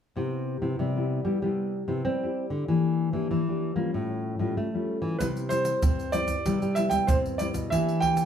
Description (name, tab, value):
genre	samba and choro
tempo	95 BPM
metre	4/4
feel	straight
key	C major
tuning	A4 = 441 Hz
part	nylon-string guitar	accompaniment	0.2-8.3 s	G2 to G4	-29 LUFS	left 3 dB	none
part	nylon-string guitar	bass	0.2-8.3 s	A2 to C4	-29 LUFS	equal	none
part	warm grand piano	melody	5.2-8.3 s	B4 to G5	-27 LUFS	right 3 dB	none
part	tube shaker, surdo and pandeiro	percussion	5.2-8.3 s	none	-29 LUFS	right 2 dB	none
room	wet studio reverb, RT60 0.6 s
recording	heard from further back in the room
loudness	-25 LUFS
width	side -8 dB against mid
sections	0.2-5.2 A section; 5.2-8.3 B section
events	none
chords	0.2 Cmaj7; 2.7 Em7b5; 3.9 A7b13; 5.2 Cmaj7; 7.7 Em7b5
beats	| 0.16 0.79 1.42 2.05 | 2.68 3.31 3.94 4.57 | 5.20 5.83 6.46 7.09 | 7.72